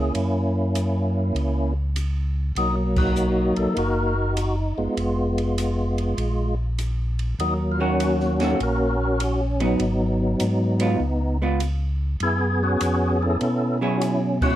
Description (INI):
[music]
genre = soul jazz organ trio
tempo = 100 BPM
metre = 4/4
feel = swing 67% on 8ths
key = F# major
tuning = A4 = 442 Hz
[part]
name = percussive tonewheel organ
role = melody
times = 0.0-14.6 s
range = F#3 to A#4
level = -23 LUFS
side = equal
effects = slow rotary speaker, overdrive, chorus vibrato
[part]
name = mellow tonewheel organ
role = bass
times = 0.0-14.6 s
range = F1 to B2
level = -24 LUFS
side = equal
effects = slow rotary speaker
[part]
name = open jazz drum kit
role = drums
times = 0.1-14.5 s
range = crash cymbal, hi-hat, kick drum, ride cymbal, snare drum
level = -31 LUFS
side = equal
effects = none
[part]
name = vintage hollow-body jazz guitar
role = accompaniment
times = 7.8-14.6 s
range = D#3 to G#4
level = -26 LUFS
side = right 2 dB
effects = none
[sound]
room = light reverb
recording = dark, warm production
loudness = -20 LUFS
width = side -13 dB against mid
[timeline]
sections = 0.0-14.6 A section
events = band accent 2.9-3.2, 14.3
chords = 0.2 F#7; 2.6 Bmaj7; 5.0 Fdim; 6.2 N.C.; 7.4 D#m7; 9.8 G#m7; 11.0 C#7; 12.2 F#9sus4